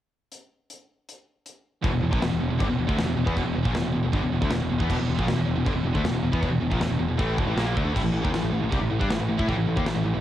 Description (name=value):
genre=heavy metal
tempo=157 BPM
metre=4/4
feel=straight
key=unclear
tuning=A4 = 441 Hz
part: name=big rock drum kit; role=drums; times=0.3-9.9 s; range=china cymbal, crash cymbal, hi-hat, kick drum, snare drum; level=-29 LUFS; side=equal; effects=cassette tape
part: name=distorted electric guitar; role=riff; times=1.8-10.2 s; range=E2 to E4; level=-29 LUFS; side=left 7 dB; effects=distortion, cassette tape
part: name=distorted electric guitar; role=riff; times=1.8-10.2 s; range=E2 to E4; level=-32 LUFS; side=equal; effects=none
part: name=scooped high-gain guitar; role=riff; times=1.8-10.2 s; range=E2 to E4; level=-30 LUFS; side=right 7 dB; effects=distortion, cassette tape
part: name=growling picked electric bass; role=bass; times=1.8-10.2 s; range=E1 to A2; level=-27 LUFS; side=equal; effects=overdrive
room=little or no reverb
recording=home recording on cassette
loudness=-22 LUFS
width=side -12 dB against mid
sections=0.3-1.8 A section; 1.8-10.2 B section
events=none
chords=0.3 N.C.; 1.8 Em; 7.9 A5